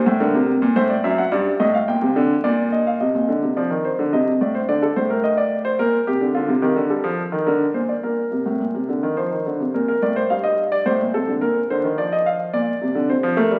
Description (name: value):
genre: classical, baroque-style two-part invention for grand piano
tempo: 107 BPM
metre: 3/4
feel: straight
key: C minor, Bb major from 6.3 s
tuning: A4 = 441 Hz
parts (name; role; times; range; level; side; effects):
- warm baby grand piano; solo; 0.0-13.6 s; F#2 to G5; -20 LUFS; equal; none
room: wet recital hall reverb, RT60 1.6 s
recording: very old 78 rpm record, vinyl crackle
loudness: -20 LUFS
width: mono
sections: 0.0-3.0 A section; 3.0-9.7 B section; 9.7-13.6 A section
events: none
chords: 0.0 Gm (rootless); 0.8 F#dim/A; 1.3 G5; 2.4 Bbadd11; 3.0 Cm; 4.1 Adim/C; 4.7 D5; 5.8 Bb; 6.3 Dm; 7.5 Bbadd9; 8.0 Cm13; 9.2 F5; 9.7 Bb; 10.9 Amadd11; 11.4 Bb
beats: 0.20 0.75 | 1.31 1.87 2.43 | 3.00 3.56 4.12 | 4.68 5.24 5.79 | 6.35 6.90 7.46 | 8.03 8.60 9.17 | 9.74 10.30 10.86 | 11.42 11.98 12.54 | 13.09